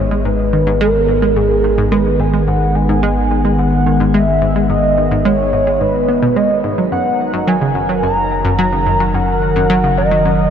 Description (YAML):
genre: ambient, sequencer-driven space music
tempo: 108 BPM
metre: 4/4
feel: straight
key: G# minor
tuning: A4 = 436 Hz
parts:
  - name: pulse-width lead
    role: melody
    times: 0.0-10.5 s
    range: G#4 to A#5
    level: -16 LUFS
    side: equal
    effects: chorus, shimmer reverb, tape echo
  - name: phased analog pad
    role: sustained chords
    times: 0.0-10.5 s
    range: D#3 to A#4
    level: -18 LUFS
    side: equal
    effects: phaser, chorus
  - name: analog pluck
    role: riff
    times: 0.0-10.3 s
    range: F#2 to B3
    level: -18 LUFS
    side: right 1 dB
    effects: chorus, tape echo
  - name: round analog bass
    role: bass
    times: 0.0-10.5 s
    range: F#1 to G#1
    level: -20 LUFS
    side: equal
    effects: none
room: wet huge ambient reverb, RT60 8.7 s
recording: in a vast, echoing space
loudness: -12 LUFS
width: side -8 dB against mid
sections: 0.0-10.5 A section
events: none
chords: 0.0 G#m; 6.9 F#6